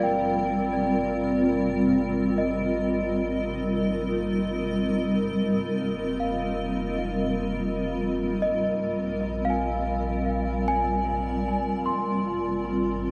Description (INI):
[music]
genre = ambient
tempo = free time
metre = none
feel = none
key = Ab lydian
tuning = A4 = 440 Hz
[part]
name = granular cloud pad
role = sustained chords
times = 0.0-13.1 s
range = G3 to Eb5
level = -27 LUFS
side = equal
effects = built-in reverb, subtle chorus
[part]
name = celesta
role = arpeggios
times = 0.0-13.1 s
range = D5 to C6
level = -32 LUFS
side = equal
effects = delay
[part]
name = warm sub bass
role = bass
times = 0.0-13.1 s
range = F1 to Bb1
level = -39 LUFS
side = equal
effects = none
[sound]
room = wet huge ambient reverb, RT60 8.4 s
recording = dreamy mix soaked in reverb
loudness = -26 LUFS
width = mono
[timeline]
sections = 0.0-13.1 A section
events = fade-in on sub bass 0.0-13.1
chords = 0.0 Ab6; 5.7 F9sus4; 8.8 Bb9; 11.9 Ab6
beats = free time